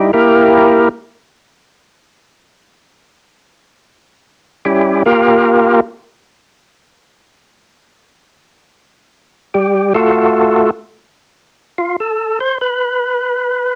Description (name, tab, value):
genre	jazz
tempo	free time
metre	none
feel	none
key	unclear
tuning	A4 = 441 Hz
part	percussive tonewheel organ	solo	0.0-0.9, 4.7-5.8, 9.5-13.8 s	G3 to C5	-13 LUFS	equal	slow rotary speaker, overdrive
room	light reverb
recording	home recording on cassette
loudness	-13 LUFS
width	mono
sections	0.0-13.8 A section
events	tonewheel organ solo 0.0-13.8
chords	0.0 Gm6; 2.8 C#dim7; 5.2 Gm7; 7.7 G9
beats	free time